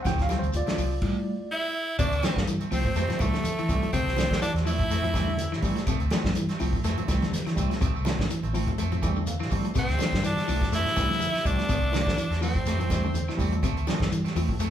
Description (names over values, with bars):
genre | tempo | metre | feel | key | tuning
afrobeat | 124 BPM | 4/4 | swing 54% on 16ths | D minor | A4 = 440 Hz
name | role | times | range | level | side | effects
tine electric piano | accompaniment | 0.0-14.5 s | F3 to A5 | -33 LUFS | right 1 dB | overdrive, fast stereo tremolo
congas | percussion | 0.0-14.6 s | none | -38 LUFS | right 2 dB | none
electric guitar at the edge of break-up | arpeggios | 0.1-14.7 s | C3 to A3 | -33 LUFS | left 3 dB | none
twangy electric guitar | stabs | 0.1-14.7 s | E3 to C4 | -36 LUFS | right 5 dB | none
vintage muted fingered electric bass | bass | 0.1-14.7 s | A1 to F3 | -29 LUFS | equal | none
warm soul drum kit | drums | 0.1-14.7 s | crash cymbal, hi-hat, kick drum, snare drum | -29 LUFS | equal | none
claves | percussion | 0.1-14.5 s | none | -49 LUFS | left 3 dB | none
shekere | percussion | 0.1-14.7 s | none | -40 LUFS | left 3 dB | none
raspy tenor saxophone | melody | 1.5-5.6, 9.8-13.4 s | A3 to E4 | -29 LUFS | equal | none
bright alto saxophone | second line | 1.5-5.6, 9.8-13.3 s | A4 to E5 | -37 LUFS | right 2 dB | none
room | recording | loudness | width
moderate large studio reverb, RT60 1.1 s | band playing live in one room | -24 LUFS | side -10 dB against mid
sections
0.0-2.0 A section; 2.0-14.7 B section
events
tine electric piano solo 0.0-2.0; stop 1.0-2.0; tine electric piano fill 9.0-9.8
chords
0.0 Fmaj7; 5.9 Dm7; 8.8 Fmaj7; 9.8 Dm7; 12.7 Fmaj7; 13.6 Dm7